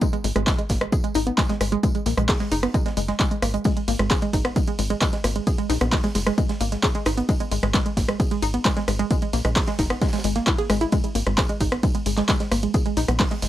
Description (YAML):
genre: driving peak-time techno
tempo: 132 BPM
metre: 4/4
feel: straight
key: G# minor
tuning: A4 = 440 Hz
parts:
  - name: warbly dusty pluck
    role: riff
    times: 0.0-13.5 s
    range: G#3 to G#4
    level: -25 LUFS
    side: equal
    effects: chorus, tube saturation, sidechain pumping, analog delay
  - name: deep reggae drum kit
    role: drums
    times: 0.0-13.5 s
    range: hi-hat, snare drum, tambourine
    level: -38 LUFS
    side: right 1 dB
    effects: sidechain pumping on hats, high-pass filter on hats, high-pass filter on snare, sidechain pumping on perc, high-pass filter on perc, high-pass filter on room
  - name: electronic kick drum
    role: drums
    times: 0.0-13.3 s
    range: none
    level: -22 LUFS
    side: equal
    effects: none
  - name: punchy analog drum machine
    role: drums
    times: 0.0-13.5 s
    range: handclaps, hi-hat, ride cymbal, rim click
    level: -27 LUFS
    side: equal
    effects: none
  - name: tight sequencer bass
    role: bass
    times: 0.2-13.5 s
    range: F#1 to A#1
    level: -26 LUFS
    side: equal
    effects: sidechain pumping
room: small room ambience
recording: dry, gritty hardware recording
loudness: -20 LUFS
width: side -13 dB against mid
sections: 0.0-13.5 A section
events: none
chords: none